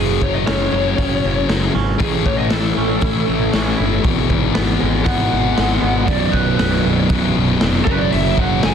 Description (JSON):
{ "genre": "quiet-loud alternative rock", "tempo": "118 BPM", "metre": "4/4", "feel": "straight", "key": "unclear", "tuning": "A4 = 439 Hz", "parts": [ { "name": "lead guitar through a small cranked amp", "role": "melody", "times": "0.0-8.7 s", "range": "G#4 to G#5", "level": "-23 LUFS", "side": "right 1 dB", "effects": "overdrive, digital delay" }, { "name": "twangy electric guitar", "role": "arpeggios", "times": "0.0-6.1 s", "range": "E2 to E4", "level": "-26 LUFS", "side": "right 8 dB", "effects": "digital delay" }, { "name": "fuzz guitar", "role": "riff", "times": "0.0-8.7 s", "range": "B1 to A3", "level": "-20 LUFS", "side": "left 12 dB", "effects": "distortion" }, { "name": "fuzz picked electric bass", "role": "bass", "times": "0.0-8.7 s", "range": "B0 to A1", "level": "-21 LUFS", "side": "right 1 dB", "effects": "overdrive" }, { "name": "raw garage drum kit", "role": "drums", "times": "0.2-8.7 s", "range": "hi-hat, kick drum, snare drum", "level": "-20 LUFS", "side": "equal", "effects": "none" }, { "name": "thick fuzz guitar", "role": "riff", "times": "6.1-8.7 s", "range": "B1 to F#3", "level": "-20 LUFS", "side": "right 10 dB", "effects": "distortion" } ], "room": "light reverb, studio reverb", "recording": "dense, heavily limited modern master", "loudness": "-14 LUFS", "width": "side -8 dB against mid", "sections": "0.0-8.7 A section", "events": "lead electric guitar solo 0.0-8.7", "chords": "0.0 F#5; 2.0 A; 4.0 E/G#; 6.1 B5; 7.9 F#5", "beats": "0.47 0.98 1.49 | 2.00 2.52 3.02 3.54 | 4.05 4.56 5.07 5.58 | 6.09 6.60 7.11 7.62 | 8.13 8.64" }